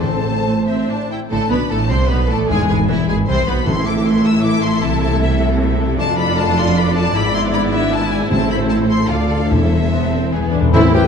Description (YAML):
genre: classical, dramatic, fast romantic movement for symphony orchestra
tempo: 140-158 BPM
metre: 3/4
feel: rubato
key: A minor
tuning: A4 = 440 Hz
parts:
  - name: warm studio violin section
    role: melody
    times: 0.0-11.1 s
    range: E5 to E6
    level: -23 LUFS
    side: left 3 dB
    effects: none
  - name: warm symphonic violin section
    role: second line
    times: 0.0-11.0 s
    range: E4 to E5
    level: -24 LUFS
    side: left 2 dB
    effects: none
  - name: warm symphonic viola section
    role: accompaniment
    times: 0.0-11.1 s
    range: E3 to A4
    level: -22 LUFS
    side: right 1 dB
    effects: none
  - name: concert harp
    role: arpeggios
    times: 0.0-11.1 s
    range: F2 to D5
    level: -22 LUFS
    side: left 9 dB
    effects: none
  - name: warm symphonic cello section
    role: bass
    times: 0.0-11.1 s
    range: D2 to C3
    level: -20 LUFS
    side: right 2 dB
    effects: none
  - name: warm symphonic double bass section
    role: bass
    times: 0.0-11.1 s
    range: E1 to D2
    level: -21 LUFS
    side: right 3 dB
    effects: none
  - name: timpani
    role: percussion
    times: 0.0-4.2, 8.3-11.1 s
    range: E2 to A2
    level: -20 LUFS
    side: left 1 dB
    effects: none
  - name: mellow clarinet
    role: second line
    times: 10.7-11.0 s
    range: C5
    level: -25 LUFS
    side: left 1 dB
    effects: none
  - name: mellow cor anglais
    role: second line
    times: 10.7-11.0 s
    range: E4 to G4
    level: -21 LUFS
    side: equal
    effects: none
  - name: mellow small flute group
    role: second line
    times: 10.7-11.1 s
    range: A4 to B4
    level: -22 LUFS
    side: left 3 dB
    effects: none
  - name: mellow bassoon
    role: accompaniment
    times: 10.7-11.0 s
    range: E3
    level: -21 LUFS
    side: left 1 dB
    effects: none
  - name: warm French horn section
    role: sustained chords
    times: 10.7-11.1 s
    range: E4 to G4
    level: -21 LUFS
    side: left 2 dB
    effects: none
  - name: warm trombone section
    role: sustained chords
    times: 10.7-10.9 s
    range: E3 to C4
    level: -24 LUFS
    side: right 3 dB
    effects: none
room: wet scoring stage reverb, RT60 1.5 s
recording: dark, warm production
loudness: -14 LUFS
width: side -6 dB against mid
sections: 0.0-1.3 A section; 1.3-10.7 B section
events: timpani fill 10.3-10.7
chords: 0.0 Am; 1.3 Dm; 2.5 E7; 3.7 A5; 4.8 Am/C; 6.0 Dm/F; 7.2 E7/G#; 8.3 Am; 9.1 Dm; 9.5 Am/E; 10.3 E